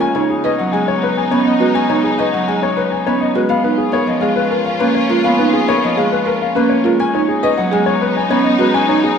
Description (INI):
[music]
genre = classical, minimalist pattern music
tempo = 103 BPM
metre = 3/4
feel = straight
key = B lydian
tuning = A4 = 439 Hz
[part]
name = warm grand piano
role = melody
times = 0.0-9.2 s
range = G#4 to G#5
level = -18 LUFS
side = left 6 dB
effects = none
[part]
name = Celtic harp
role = accompaniment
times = 0.0-9.2 s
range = C#3 to C#4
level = -18 LUFS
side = right 1 dB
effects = none
[part]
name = rich studio string section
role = sustained chords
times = 0.0-9.2 s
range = B3 to E#4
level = -21 LUFS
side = equal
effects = none
[part]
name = buzzing marimba with soft mallets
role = arpeggios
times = 0.0-9.1 s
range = C#4 to C#5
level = -19 LUFS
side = right 7 dB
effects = none
[sound]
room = wet recital hall reverb, RT60 1.7 s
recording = none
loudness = -13 LUFS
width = side -7 dB against mid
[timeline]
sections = 0.0-9.2 A section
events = none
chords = 0.0 B6; 3.5 C#13; 7.0 B6